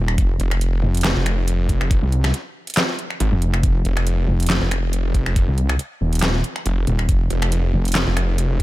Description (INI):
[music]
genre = heavy wobble dubstep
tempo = 139 BPM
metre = 4/4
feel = swing 54% on 16ths, half-time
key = unclear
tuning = A4 = 441 Hz
[part]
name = wobble bass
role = bass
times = 0.0-8.1 s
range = Eb1 to C2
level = -19 LUFS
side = equal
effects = chorus, overdrive
[part]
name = dubstep drum kit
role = drums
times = 0.1-8.6 s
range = finger snaps, handclaps, hi-hat, snare drum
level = -23 LUFS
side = equal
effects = none
[part]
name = electronic kick drum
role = drums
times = 0.2-8.6 s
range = none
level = -18 LUFS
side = equal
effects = none
[part]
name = snarling distorted saw bass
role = bass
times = 0.4-8.6 s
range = F1 to Ab1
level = -19 LUFS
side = equal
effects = distortion, overdrive
[sound]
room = little or no reverb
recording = none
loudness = -17 LUFS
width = side -17 dB against mid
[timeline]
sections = 0.0-8.6 A section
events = none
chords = none